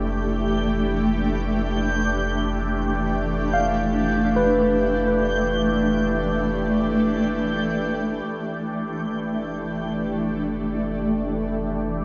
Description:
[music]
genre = ambient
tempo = free time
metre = none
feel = none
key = F lydian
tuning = A4 = 440 Hz
[part]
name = shimmering ambient pad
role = sustained chords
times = 0.0-12.0 s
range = E3 to G4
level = -25 LUFS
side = equal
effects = chorus, built-in reverb, phaser
[part]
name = barky tine electric piano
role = arpeggios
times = 0.0-8.3 s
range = B4 to F5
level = -27 LUFS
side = equal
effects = analog delay
[part]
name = warm sub bass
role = bass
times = 0.0-12.0 s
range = F1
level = -32 LUFS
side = equal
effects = none
[part]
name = backwards swelling texture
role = texture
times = 0.2-8.3 s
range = G6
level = -35 LUFS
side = equal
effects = built-in reverb
[sound]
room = wet spring reverb, RT60 2.8 s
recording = echo-heavy mix, nothing above 7.9 kHz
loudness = -23 LUFS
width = mono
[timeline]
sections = 0.0-8.3 A section; 8.3-12.0 B section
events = fade-in on synth texture 0.0-8.3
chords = 0.0 Fmaj7; 8.3 Fmaj13

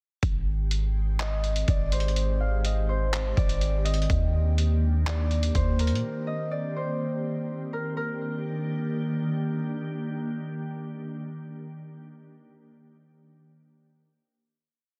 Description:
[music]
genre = hip hop, atmospheric cloud-rap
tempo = 124 BPM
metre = 4/4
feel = half-time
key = Eb major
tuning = A4 = 440 Hz
[part]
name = glassy FM pad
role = sustained chords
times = 0.6-12.0 s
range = Eb3 to G4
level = -34 LUFS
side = equal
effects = ensemble chorus, built-in reverb, sidechain pumping
[part]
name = warm 808-style bass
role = bass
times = 0.2-6.0 s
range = Ab1 to Bb2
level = -27 LUFS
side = equal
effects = none
[part]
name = trip hop sampler-style drum kit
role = drums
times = 0.2-6.0 s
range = handclaps, hi-hat, kick drum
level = -31 LUFS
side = equal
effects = none
[part]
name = concert harp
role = melody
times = 1.2-10.1 s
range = Bb4 to F5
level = -36 LUFS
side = equal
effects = tape echo
[sound]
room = little or no reverb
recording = dense, heavily limited modern master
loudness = -27 LUFS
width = mono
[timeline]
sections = 0.2-8.0 verse; 8.0-11.8 final chord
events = none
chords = 0.2 Abmaj7; 4.1 Ebmaj7

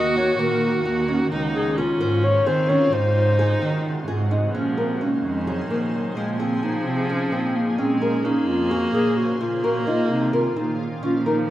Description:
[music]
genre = contemporary instrumental, chamber music in an uneven meter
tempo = 259 BPM (eighths)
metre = 7/8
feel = straight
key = Bb minor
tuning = A4 = 440 Hz
[part]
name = dark clarinet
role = melody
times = 0.0-11.5 s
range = F3 to Eb5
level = -24 LUFS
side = left 2 dB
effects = none
[part]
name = rich viola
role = second line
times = 0.0-11.5 s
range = Eb3 to Gb4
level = -27 LUFS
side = right 1 dB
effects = none
[part]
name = shimmering ambient pad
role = sustained chords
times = 0.0-11.5 s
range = C3 to C5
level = -30 LUFS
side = equal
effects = chorus, built-in reverb
[part]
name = nylon-string guitar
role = arpeggios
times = 0.0-11.4 s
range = Bb3 to C5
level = -26 LUFS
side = right 1 dB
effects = none
[part]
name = muted cello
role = bass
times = 0.0-11.5 s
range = Db2 to Eb3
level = -25 LUFS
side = right 2 dB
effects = none
[sound]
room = light reverb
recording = none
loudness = -19 LUFS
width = side -14 dB against mid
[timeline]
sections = 0.0-4.5 A section; 4.5-11.5 B section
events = none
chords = 0.0 Ebm; 1.3 Dbmaj7; 2.9 Ab7; 4.5 Bbm9; 6.2 Fm7/Bb; 7.8 Bbm9; 9.4 F7sus4/Bb

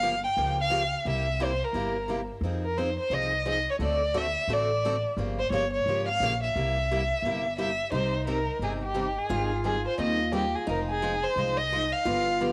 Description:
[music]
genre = acoustic string swing (jazz manouche)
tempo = 175 BPM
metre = 4/4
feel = swing 60% on 8ths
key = C minor from 7.9 s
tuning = A4 = 439 Hz
[part]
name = warm violin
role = melody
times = 0.0-12.5 s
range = G4 to G5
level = -30 LUFS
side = equal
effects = cassette tape
[part]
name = picked steel-string acoustic guitar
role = accompaniment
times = 0.0-12.5 s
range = C3 to C5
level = -36 LUFS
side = equal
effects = cassette tape
[part]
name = upright bass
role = bass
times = 0.0-12.5 s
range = F1 to F2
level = -34 LUFS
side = equal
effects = transformer saturation
[part]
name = picked steel-string acoustic guitar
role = second line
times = 7.9-12.5 s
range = Eb4 to F4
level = -37 LUFS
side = equal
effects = cassette tape
[sound]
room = light reverb, studio reverb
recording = home recording on cassette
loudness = -28 LUFS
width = mono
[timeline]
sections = 0.0-7.9 A section; 7.9-12.5 B section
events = none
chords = 0.0 Gm7b5; 1.1 C7; 2.4 Fm7; 3.8 D7; 5.2 Gm7b5; 6.5 C7; 7.9 Cm; 9.3 Abmaj7; 10.7 Fm7

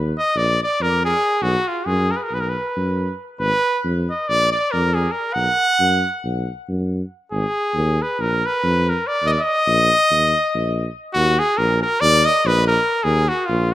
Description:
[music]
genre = balkan folk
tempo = 278 BPM (eighths)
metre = 9/8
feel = straight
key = Eb harmonic minor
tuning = A4 = 439 Hz
[part]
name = mellow tuba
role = bass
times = 0.0-13.7 s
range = Ab1 to F#2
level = -21 LUFS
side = equal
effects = none
[part]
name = clear trumpet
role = melody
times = 0.2-13.7 s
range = F4 to F#5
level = -18 LUFS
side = equal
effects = none
[sound]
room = moderate lush hall reverb, RT60 2.3 s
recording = rough home demo mix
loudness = -17 LUFS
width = side -14 dB against mid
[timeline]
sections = 0.0-11.1 A section; 11.1-13.7 B section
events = speeding up 0.0-13.7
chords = 0.3 Bb5; 1.4 B5; 3.4 Abm; 4.3 Bb5; 5.4 B5; 7.3 Ab5; 8.2 Bb5; 9.2 Eb5

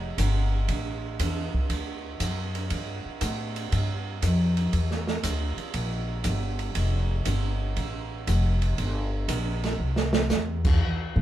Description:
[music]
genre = jazz piano trio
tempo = 119 BPM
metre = 4/4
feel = swing 69% on 8ths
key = F major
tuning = A4 = 440 Hz
[part]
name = upright bass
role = bass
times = 0.0-11.2 s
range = F1 to A2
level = -26 LUFS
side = equal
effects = none
[part]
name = open jazz drum kit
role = drums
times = 0.2-10.7 s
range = crash cymbal, hi-hat, kick drum, ride cymbal, snare drum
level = -29 LUFS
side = right 3 dB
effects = none
[sound]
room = light reverb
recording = band playing live in one room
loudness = -24 LUFS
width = side -13 dB against mid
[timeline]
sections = 0.0-10.8 A section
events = drum fill 9.8-10.3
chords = none

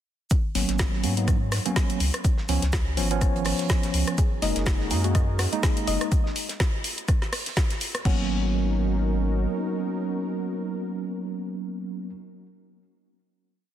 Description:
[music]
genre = deep house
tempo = 124 BPM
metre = 4/4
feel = swing 56% on 16ths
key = G# dorian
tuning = A4 = 439 Hz
[part]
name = damped 70s drum kit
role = drums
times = 0.3-7.9 s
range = hi-hat, shaker, snare drum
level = -41 LUFS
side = right 3 dB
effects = none
[part]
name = deep house drum kit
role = drums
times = 0.3-8.2 s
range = crash cymbal, hi-hat, rim click, snare drum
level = -30 LUFS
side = left 1 dB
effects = none
[part]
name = electronic kick drum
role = drums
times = 0.3-8.2 s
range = none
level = -23 LUFS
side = equal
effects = none
[part]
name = tine electric piano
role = stabs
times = 0.6-12.1 s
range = E#3 to F#4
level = -28 LUFS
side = right 2 dB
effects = medium stereo tremolo, sidechain pumping, tape echo
[part]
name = round analog bass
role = bass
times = 0.6-9.5 s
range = F#1 to G#2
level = -26 LUFS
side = equal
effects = sidechain pumping
[part]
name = warm analog pad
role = sustained chords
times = 4.2-12.1 s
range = C#4 to A#4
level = -36 LUFS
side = equal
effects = chorus, sidechain pumping
[part]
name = soft round pluck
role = arpeggios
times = 4.2-8.3 s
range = F#4 to D#5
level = -35 LUFS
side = left 4 dB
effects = chorus, sidechain pumping, tape echo
[sound]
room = light reverb, digital ambience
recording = dense, heavily limited modern master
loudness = -23 LUFS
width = side -11 dB against mid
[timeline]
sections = 0.3-8.1 groove; 8.1-11.9 final chord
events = none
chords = 0.3 G#m11; 2.0 C#7; 4.2 F#69; 6.1 N.C.; 8.1 G#m11

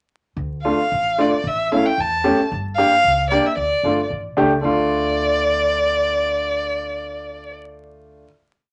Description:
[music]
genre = klezmer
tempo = 112 BPM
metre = 2/4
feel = straight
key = D harmonic minor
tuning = A4 = 440 Hz
[part]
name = upright bass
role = bass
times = 0.4-8.2 s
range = G1 to E2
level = -33 LUFS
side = equal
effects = none
[part]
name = warm violin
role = melody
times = 0.6-7.5 s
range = D5 to A5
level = -22 LUFS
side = equal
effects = none
[part]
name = clear upright piano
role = accompaniment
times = 0.6-8.2 s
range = A3 to G4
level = -23 LUFS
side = equal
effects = none
[sound]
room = wet club reverb, RT60 0.6 s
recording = vinyl crackle, nothing above 10.7 kHz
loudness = -19 LUFS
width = mono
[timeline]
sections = 0.4-4.6 A section; 4.6-6.8 final chord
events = none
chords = 0.4 Dm; 1.4 A; 2.5 Gm; 3.6 D5; 4.6 Dm

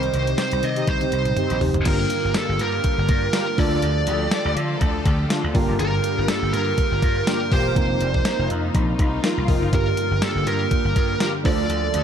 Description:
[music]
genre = 1980s-style pop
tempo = 122 BPM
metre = 4/4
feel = swing 55% on 16ths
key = G minor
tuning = A4 = 439 Hz
[part]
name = high-gain lead guitar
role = melody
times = 0.0-12.0 s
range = A4 to Eb5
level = -25 LUFS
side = right 4 dB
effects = distortion, digital delay
[part]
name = FM electric piano with auto-pan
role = accompaniment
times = 0.0-12.0 s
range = G2 to D5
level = -28 LUFS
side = equal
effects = phaser
[part]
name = sweeping resonant pad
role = sustained chords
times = 0.0-12.0 s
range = C3 to A4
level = -30 LUFS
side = left 1 dB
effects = chorus
[part]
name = vintage slap bass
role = bass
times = 0.0-12.0 s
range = E1 to D3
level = -24 LUFS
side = equal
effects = none
[part]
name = clean 12-bit digital drum machine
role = drums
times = 0.0-12.0 s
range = crash cymbal, hi-hat, kick drum, snare drum, tambourine, toms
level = -23 LUFS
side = equal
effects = none
[part]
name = mellow synth brass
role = stabs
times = 0.8-11.7 s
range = C4 to Bb4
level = -30 LUFS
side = left 2 dB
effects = chorus, digital delay
[part]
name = warm studio violin section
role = second line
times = 4.1-12.0 s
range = D4 to Bb4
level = -32 LUFS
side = left 3 dB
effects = digital delay
[sound]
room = moderate concert hall reverb, RT60 2.0 s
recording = dark, warm production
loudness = -18 LUFS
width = side -8 dB against mid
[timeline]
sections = 0.0-1.9 A section; 1.9-12.0 B section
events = band accent 0.0-1.9; drum fill 0.9-1.9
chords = 0.0 Cm; 1.9 Gm7; 3.6 Dm; 5.5 Gm7; 7.8 F7sus4; 9.7 Gm7; 11.5 Dm

